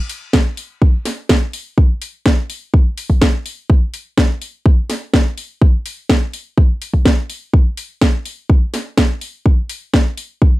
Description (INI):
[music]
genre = italo disco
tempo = 125 BPM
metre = 4/4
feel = straight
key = none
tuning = none
[part]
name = house drum kit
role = drums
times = 0.1-10.3 s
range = hi-hat, snare drum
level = -18 LUFS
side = equal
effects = none
[part]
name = electronic kick drum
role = drums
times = 0.3-10.5 s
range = none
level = -12 LUFS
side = equal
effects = none
[sound]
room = little or no reverb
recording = dry, close 1970s-style studio recording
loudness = -14 LUFS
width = side -18 dB against mid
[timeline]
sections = 0.0-10.6 A section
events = none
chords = none